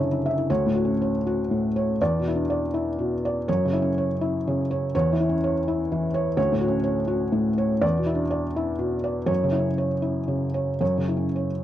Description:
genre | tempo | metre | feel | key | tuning
neoclassical minimalist piano | 122 BPM | 3/4 | uneven beats, rubato | F# minor | A4 = 436 Hz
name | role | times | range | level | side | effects
felt-muted upright piano | solo | 0.0-11.6 s | D2 to A5 | -22 LUFS | equal | none
room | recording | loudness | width
little or no reverb | dry, close 1970s-style studio recording | -22 LUFS | side -12 dB against mid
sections
0.5-11.6 A section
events
none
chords
0.5 Dmaj7; 2.0 E5; 3.5 F#5; 4.9 C#m/E; 6.4 Dmaj7; 7.8 E5; 9.3 F#5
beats
| 0.49 1.00 1.50 | 1.99 2.49 2.98 | 3.47 3.96 4.45 | 4.94 5.42 5.90 | 6.37 6.85 7.34 | 7.83 8.31 8.80 | 9.29 9.78 10.28 | 10.81 11.35

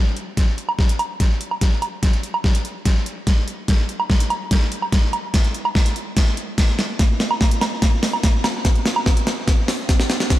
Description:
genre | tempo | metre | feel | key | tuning
heavy wobble dubstep | 145 BPM | 4/4 | half-time | none | none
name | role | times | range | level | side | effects
dubstep drum kit | drums | 0.2-10.4 s | hi-hat, snare drum, woodblock | -21 LUFS | right 1 dB | overdrive
electronic kick drum | drums | 0.4-10.4 s | none | -17 LUFS | equal | none
room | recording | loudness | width
light reverb | dark, warm production | -17 LUFS | side -15 dB against mid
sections
0.0-10.4 A section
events
build-up 0.0-10.4; drum fill 0.0-10.4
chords
none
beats
0.37 0.79 1.20 | 1.61 2.03 2.44 2.85 | 3.27 3.68 4.10 4.51 | 4.92 5.34 5.75 6.17 | 6.58 6.99 7.41 7.82 | 8.23 8.65 9.06 9.48 | 9.89 10.30

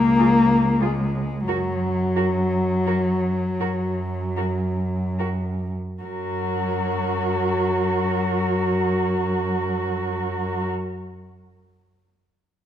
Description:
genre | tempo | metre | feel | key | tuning
classical, lyrical piece for cello ensemble | 23-33 BPM (dotted quarters) | 6/8 | rubato | F# major | A4 = 439 Hz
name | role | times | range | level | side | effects
muted cello | accompaniment | 0.0-10.7 s | F#3 to A#3 | -23 LUFS | left 2 dB | none
muted cello | bass | 0.0-10.7 s | C#2 to F#2 | -26 LUFS | right 2 dB | none
muted cello | melody | 0.2-10.6 s | G#4 to A#4 | -31 LUFS | left 6 dB | none
muted cello | second line | 0.2-10.7 s | E#4 to F#4 | -28 LUFS | right 6 dB | none
room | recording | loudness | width
wet recital hall reverb, RT60 1.7 s | none | -20 LUFS | side -10 dB against mid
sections
0.0-6.0 A section; 6.0-11.0 B section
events
slowing down 0.0-6.0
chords
0.0 C#5; 1.5 N.C.; 6.0 F#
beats
| 1.46 3.59 | 6.03 8.51

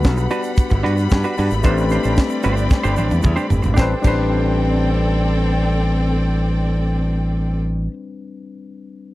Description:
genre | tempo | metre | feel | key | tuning
disco | 112 BPM | 4/4 | straight | A dorian | A4 = 442 Hz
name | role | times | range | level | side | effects
barky tine electric piano | accompaniment | 0.0-9.1 s | G3 to B4 | -25 LUFS | left 5 dB | overdrive
semi-hollow electric guitar | accompaniment | 0.0-7.9 s | D4 to C5 | -25 LUFS | right 4 dB | none
clear studio string section | sustained chords | 0.0-7.6 s | G3 to B5 | -25 LUFS | left 1 dB | none
modern bright fingered electric bass | bass | 0.0-7.9 s | G1 to G2 | -18 LUFS | equal | none
tight funk drum kit | drums | 0.0-4.2 s | crash cymbal, hi-hat, kick drum, snare drum, toms | -16 LUFS | equal | none
egg shaker | percussion | 0.0-4.2 s | none | -43 LUFS | right 13 dB | none
room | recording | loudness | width
little or no reverb | dry, close 1970s-style studio recording | -16 LUFS | side -17 dB against mid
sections
0.0-3.8 A section; 3.8-8.1 B section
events
drum fill 2.7-3.8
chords
0.0 Gmaj7; 1.6 Am11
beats
0.04 0.58 1.11 | 1.64 2.18 2.71 3.25 | 3.78 4.32 4.85 5.39 | 5.92 6.46 6.99 7.53

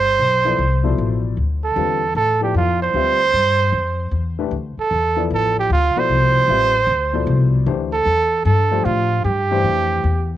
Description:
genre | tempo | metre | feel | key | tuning
modal jazz | 152 BPM | 4/4 | swing 65% on 8ths | G mixolydian | A4 = 440 Hz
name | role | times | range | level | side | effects
warm trumpet | melody | 0.0-10.4 s | F4 to C5 | -17 LUFS | right 4 dB | cassette tape
upright bass | bass | 0.0-10.4 s | G1 to A2 | -20 LUFS | left 2 dB | none
warm baby grand piano | accompaniment | 0.4-10.0 s | B2 to E5 | -24 LUFS | left 9 dB | cassette tape
room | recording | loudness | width
light reverb | home recording on cassette | -15 LUFS | side -12 dB against mid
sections
0.0-10.4 A section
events
none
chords
0.0 G13sus4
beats
0.19 0.59 0.98 | 1.37 1.77 2.16 2.55 | 2.95 3.34 3.73 4.13 | 4.52 4.92 5.31 5.70 | 6.10 6.49 6.89 7.28 | 7.67 8.07 8.46 8.86 | 9.25 9.65 10.04

